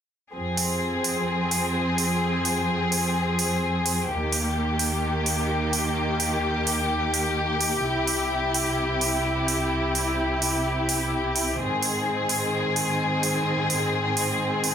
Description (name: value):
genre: EDM, festival progressive house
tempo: 128 BPM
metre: 4/4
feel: straight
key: F minor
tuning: A4 = 440 Hz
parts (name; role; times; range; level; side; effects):
- rich studio string section; sustained chords; 0.3-14.7 s; C2 to Ab4; -23 LUFS; equal; none
- electronic hi-hat; drums; 0.6-14.7 s; none; -28 LUFS; right 3 dB; none
room: moderate recital hall reverb, RT60 1.4 s, small room ambience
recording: dense, heavily limited modern master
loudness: -22 LUFS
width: side -8 dB against mid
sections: 0.3-14.7 A section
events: none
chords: 0.3 Fm; 4.1 Eb; 7.8 C; 11.6 Ab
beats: | 0.34 0.81 1.28 1.75 | 2.21 2.68 3.15 3.62 | 4.09 4.56 5.03 5.50 | 5.96 6.43 6.90 7.37 | 7.84 8.31 8.78 9.25 | 9.71 10.18 10.65 11.12 | 11.59 12.06 12.53 13.00 | 13.46 13.93 14.40